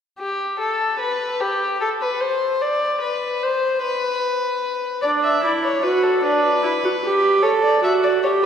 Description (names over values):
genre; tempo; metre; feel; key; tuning
classical, baroque-style fugue for string quartet; 50 BPM (dotted quarters); 6/8; straight; unclear; A4 = 441 Hz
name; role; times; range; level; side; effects
dark violin; second line; 0.2-8.5 s; G4 to E5; -21 LUFS; left 2 dB; none
warm viola; accompaniment; 5.0-8.5 s; D4 to A4; -17 LUFS; right 2 dB; none
room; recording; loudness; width
wet church reverb, RT60 3.2 s; recorded in a church or concert hall; -18 LUFS; side -8 dB against mid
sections
0.2-8.5 A section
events
none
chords
0.2 N.C.; 5.0 D; 6.2 Em7/D (rootless); 7.4 N.C.